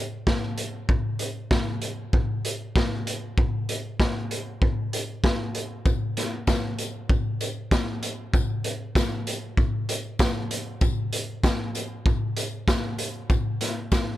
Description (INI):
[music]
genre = rock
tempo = 97 BPM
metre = 4/4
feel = straight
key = none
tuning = none
[part]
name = raw garage drum kit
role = drums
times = 0.3-14.1 s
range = hi-hat, kick drum, snare drum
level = -24 LUFS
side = equal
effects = none
[part]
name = tambourine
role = percussion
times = 5.9-14.1 s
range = none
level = -40 LUFS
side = left 6 dB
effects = none
[sound]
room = little or no reverb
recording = dark, warm production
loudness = -24 LUFS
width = side -14 dB against mid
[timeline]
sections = 0.0-14.2 A section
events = none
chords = none